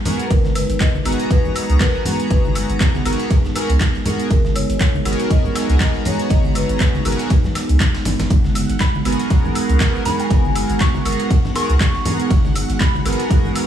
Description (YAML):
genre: deep house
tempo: 120 BPM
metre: 4/4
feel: swing 56% on 16ths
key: G# minor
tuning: A4 = 440 Hz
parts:
  - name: dark analog pad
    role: sustained chords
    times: 0.0-13.7 s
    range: G#3 to A#5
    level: -25 LUFS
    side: right 3 dB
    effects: chorus, sidechain pumping
  - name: chorused polysynth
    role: stabs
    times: 0.1-13.7 s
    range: B3 to A#5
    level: -24 LUFS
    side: right 1 dB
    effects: vintage 12-bit sampler grit, sidechain pumping, tape echo
  - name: breakbeat sampler-style drum kit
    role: drums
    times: 0.1-13.7 s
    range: ride cymbal, snare drum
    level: -34 LUFS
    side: right 1 dB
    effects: overdrive, sidechain pumping on cymbals, high-pass filter on cymbals, studio reverb, high-pass filter on snare, high-pass filter on room
  - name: deep house drum kit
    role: drums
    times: 0.1-13.7 s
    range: handclaps, hi-hat, shaker, woodblock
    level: -26 LUFS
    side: equal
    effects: overdrive, studio reverb
  - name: congas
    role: percussion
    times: 0.1-13.5 s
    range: none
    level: -26 LUFS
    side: left 2 dB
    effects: sidechain pumping on perc
  - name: marimba with medium mallets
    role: melody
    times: 0.3-7.0 s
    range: A#4 to D#5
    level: -28 LUFS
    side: left 2 dB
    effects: vintage 12-bit sampler grit, tape echo
  - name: round analog bass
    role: bass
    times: 0.3-13.1 s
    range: F#1 to C#2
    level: -19 LUFS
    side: equal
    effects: sidechain pumping
  - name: electronic kick drum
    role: drums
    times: 0.3-13.4 s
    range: none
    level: -16 LUFS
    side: equal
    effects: overdrive, studio reverb
  - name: string machine, violins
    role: texture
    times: 8.3-13.7 s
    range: F#5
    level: -34 LUFS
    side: right 2 dB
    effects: ensemble chorus, sidechain pumping
  - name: soft synth bell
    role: melody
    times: 8.8-13.3 s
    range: G#5 to C#6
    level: -27 LUFS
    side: left 1 dB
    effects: chorus, phaser, tape echo
room: digital ambience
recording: studio ambience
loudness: -15 LUFS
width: side -10 dB against mid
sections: 0.0-13.7 A section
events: none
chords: 0.0 G#m9